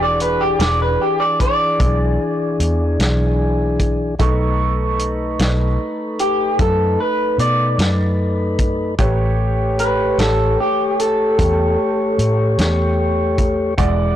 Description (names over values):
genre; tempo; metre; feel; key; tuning
slow blues; 50 BPM (dotted quarters); 12/8; straight; unclear; A4 = 440 Hz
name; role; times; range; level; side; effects
electric guitar through a small old amp; melody; 0.0-13.3 s; G4 to D5; -19 LUFS; equal; harmonic tremolo
clear upright piano; accompaniment; 0.0-14.2 s; G#3 to C#6; -26 LUFS; right 6 dB; none
mellow tonewheel organ; sustained chords; 0.0-14.2 s; E3 to D5; -21 LUFS; left 2 dB; slow rotary speaker
vintage muted fingered electric bass; bass; 0.0-14.2 s; E1 to B2; -19 LUFS; equal; tube saturation
warm soul drum kit; drums; 0.2-14.0 s; hi-hat, kick drum, snare drum; -20 LUFS; equal; none
room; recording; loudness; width
light reverb, small room ambience; blown-out, overdriven recording, overdrive; -15 LUFS; side -11 dB against mid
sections
0.0-14.2 A section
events
none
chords
0.0 E7; 4.2 B7; 9.0 A7